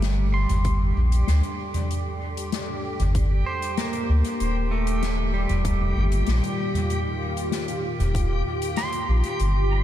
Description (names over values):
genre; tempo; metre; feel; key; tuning
ambient dub; 96 BPM; 4/4; straight; unclear; A4 = 440 Hz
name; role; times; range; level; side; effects
warm analog pad; sustained chords; 0.0-9.8 s; Bb2 to D5; -33 LUFS; equal; chorus
pedal steel guitar; arpeggios; 0.0-9.8 s; G3 to C6; -30 LUFS; right 1 dB; diffuse ambient delay
soft dub sub bass; bass; 0.0-9.8 s; Eb1 to D2; -21 LUFS; equal; none
soft-mallet drum kit; drums; 0.0-9.5 s; hi-hat, snare drum, toms; -30 LUFS; equal; dub echo
backwards swelling texture; texture; 0.0-9.8 s; G4; -32 LUFS; left 1 dB; built-in reverb
electronic kick drum; drums; 0.6-8.3 s; none; -26 LUFS; equal; none
room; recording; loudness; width
light reverb, small room ambience; none; -22 LUFS; side -12 dB against mid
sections
0.0-9.8 A section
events
fade-in on analog synth pad 0.0-9.8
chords
0.0 Gm; 4.4 Ebmaj7